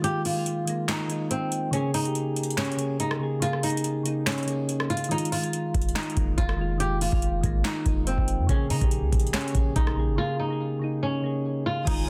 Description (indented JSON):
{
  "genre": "hip hop, trap",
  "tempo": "142 BPM",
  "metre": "4/4",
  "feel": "half-time",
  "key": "unclear",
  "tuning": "A4 = 439 Hz",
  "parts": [
    { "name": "flamenco guitar", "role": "melody", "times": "0.0-12.0 s", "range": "C4 to G4", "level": "-32 LUFS", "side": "equal", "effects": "low-pass filter" },
    { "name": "soft electric-piano-like synth keys", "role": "accompaniment", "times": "0.0-12.1 s", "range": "Db3 to Ab4", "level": "-31 LUFS", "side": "equal", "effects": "chorus, low-pass filter" },
    { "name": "booming analog drum machine", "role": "drums", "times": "0.0-12.1 s", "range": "crash cymbal, handclaps, hi-hat, kick drum, rim click, snare drum", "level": "-30 LUFS", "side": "equal", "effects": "overdrive" },
    { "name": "clean 808-style bass", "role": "bass", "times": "5.7-12.1 s", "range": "F1 to Db3", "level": "-29 LUFS", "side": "equal", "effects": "none" },
    { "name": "warm studio string section", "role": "sustained chords", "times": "11.9-12.1 s", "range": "F4 to Eb6", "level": "-40 LUFS", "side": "equal", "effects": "none" }
  ],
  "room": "light reverb, digital ambience",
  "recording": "dense, heavily limited modern master",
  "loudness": "-26 LUFS",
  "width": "mono",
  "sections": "0.0-11.9 A section",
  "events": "break 0.0-5.1, 10.2-11.9; kick muted 5.1-5.5",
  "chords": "0.0 Fm7; 1.7 Bbm7; 5.1 Fm7; 8.5 Bbm7"
}